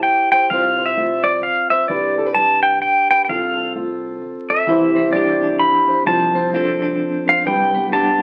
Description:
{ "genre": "acoustic folk duo or small band", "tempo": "130 BPM", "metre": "3/4", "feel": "swing 61% on 8ths", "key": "C major", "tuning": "A4 = 440 Hz", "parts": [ { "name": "pedal steel guitar", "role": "melody", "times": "0.0-8.2 s", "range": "D5 to B5", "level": "-18 LUFS", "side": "equal", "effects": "none" }, { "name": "fingerpicked plugged-in steel-string acoustic guitar", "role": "accompaniment", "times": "0.0-8.2 s", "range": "C3 to C5", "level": "-24 LUFS", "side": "equal", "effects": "none" }, { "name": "deep dub fingered electric bass", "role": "bass", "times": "0.5-8.2 s", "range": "C2", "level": "-35 LUFS", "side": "equal", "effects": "none" }, { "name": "clean electric guitar", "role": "arpeggios", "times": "4.7-8.2 s", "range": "E3 to A4", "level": "-25 LUFS", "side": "equal", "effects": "tremolo" } ], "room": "wet studio reverb, RT60 0.6 s", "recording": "very old 78 rpm record, vinyl crackle", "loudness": "-17 LUFS", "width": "mono", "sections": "0.0-8.2 A section", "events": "none", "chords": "0.0 C; 0.5 Cadd11; 1.9 G/C; 3.3 F/C; 4.7 Cadd9; 6.1 Dm7/C; 7.5 G/C" }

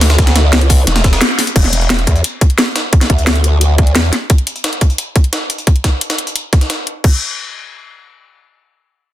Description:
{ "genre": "dark technical drum and bass", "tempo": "175 BPM", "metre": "4/4", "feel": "straight", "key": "unclear", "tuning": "A4 = 440 Hz", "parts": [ { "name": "growl bass", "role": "bass", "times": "0.0-4.1 s", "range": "E1 to E2", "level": "-12 LUFS", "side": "equal", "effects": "chorus" }, { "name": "drum and bass drum kit", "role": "drums", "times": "0.0-7.1 s", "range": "crash cymbal, hi-hat, snare drum", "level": "-16 LUFS", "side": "left 1 dB", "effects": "overdrive" }, { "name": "jungle sampler-style drum kit", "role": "drums", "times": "0.0-6.8 s", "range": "hi-hat, snare drum", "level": "-20 LUFS", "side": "equal", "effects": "high-pass filter on hats, high-pass filter on snare, high-pass filter on room" }, { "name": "electronic kick drum", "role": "drums", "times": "0.2-7.1 s", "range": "none", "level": "-10 LUFS", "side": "equal", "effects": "overdrive" } ], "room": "little or no reverb", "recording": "dense, heavily limited modern master", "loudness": "-11 LUFS", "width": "side -13 dB against mid", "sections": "0.0-1.6 A section; 1.6-7.0 B section; 7.0-9.1 C section", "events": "drop 0.0-1.6; band accent 1.2", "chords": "none" }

